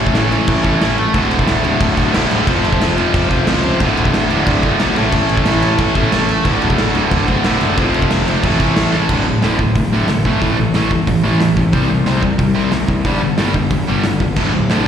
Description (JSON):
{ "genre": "punk rock", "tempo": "182 BPM", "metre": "4/4", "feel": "straight", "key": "unclear", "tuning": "A4 = 440 Hz", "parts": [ { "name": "distorted electric guitar", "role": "riff", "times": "0.0-14.9 s", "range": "D2 to C4", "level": "-18 LUFS", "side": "right 9 dB", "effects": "overdrive" }, { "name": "overdriven electric guitar", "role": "riff", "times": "0.0-14.9 s", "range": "D2 to A4", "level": "-18 LUFS", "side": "left 9 dB", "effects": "slapback echo" }, { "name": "fuzz picked electric bass", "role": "bass", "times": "0.0-14.9 s", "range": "D1 to C#2", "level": "-19 LUFS", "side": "equal", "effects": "overdrive" }, { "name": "big rock drum kit", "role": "drums", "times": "0.1-14.8 s", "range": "crash cymbal, hi-hat, kick drum, snare drum", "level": "-19 LUFS", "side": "equal", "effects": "none" } ], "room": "little or no reverb", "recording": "live gig heard through the venue's PA, recital hall reverb", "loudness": "-12 LUFS", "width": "side -8 dB against mid", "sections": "0.0-9.1 A section; 9.1-14.9 B section", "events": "drum fill 8.9", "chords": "0.0 A; 1.1 D; 2.5 F; 3.8 D; 5.0 A; 6.5 D; 7.8 F; 8.4 A; 9.1 D5; 10.3 A5; 11.7 C5; 13.1 G5; 14.4 D5" }